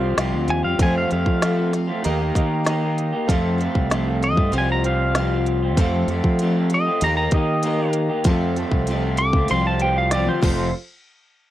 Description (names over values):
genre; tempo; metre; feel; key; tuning
folk rock and heartland rock; 96 BPM; 4/4; straight; F mixolydian; A4 = 440 Hz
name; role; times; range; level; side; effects
clear grand piano; accompaniment; 0.0-10.7 s; F4 to F5; -32 LUFS; right 7 dB; none
picked twelve-string acoustic guitar; accompaniment; 0.0-10.7 s; F2 to A4; -26 LUFS; left 5 dB; none
mellow tonewheel organ; sustained chords; 0.0-10.7 s; C4 to C6; -36 LUFS; equal; none
electric guitar through a small old amp; riff; 0.0-10.7 s; F2 to G4; -25 LUFS; right 2 dB; none
fingered electric bass; bass; 0.0-10.7 s; F1 to F3; -23 LUFS; equal; none
organic electronic drum kit; drums; 0.2-10.6 s; crash cymbal, hi-hat, kick drum, snare drum, toms; -21 LUFS; equal; none
pedal steel guitar; melody; 0.5-10.7 s; C5 to D6; -24 LUFS; equal; none
room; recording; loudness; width
little or no reverb; dry, close 1970s-style studio recording; -18 LUFS; side -13 dB against mid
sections
0.0-10.7 A section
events
pedal steel guitar solo 0.0-10.7; drum fill 10.1-10.7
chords
0.0 Csus4; 0.8 F; 2.0 Eb; 3.3 F; 4.5 Csus4; 5.8 F; 7.0 Eb; 8.3 F; 9.5 Csus4; 10.4 F; 10.7 N.C.